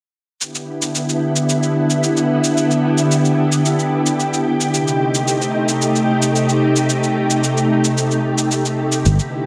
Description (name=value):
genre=sunset chillout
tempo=111 BPM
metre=4/4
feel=straight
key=G major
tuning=A4 = 441 Hz
part: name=soft string machine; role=sustained chords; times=0.4-9.5 s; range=C3 to G4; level=-18 LUFS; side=equal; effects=ensemble chorus
part: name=shaker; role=drums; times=0.4-9.3 s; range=none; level=-25 LUFS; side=equal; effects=none
part: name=fingered electric bass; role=bass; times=9.1-9.2 s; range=G1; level=-15 LUFS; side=equal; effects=none
room=wet lush hall reverb, RT60 1.9 s, digital ambience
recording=none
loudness=-17 LUFS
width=mono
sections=0.4-9.5 A section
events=none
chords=0.4 G6; 4.7 Cm6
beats=| 0.41 0.95 1.49 2.03 | 2.57 3.11 3.65 4.19 | 4.74 5.28 5.82 6.36 | 6.90 7.44 7.98 8.52 | 9.06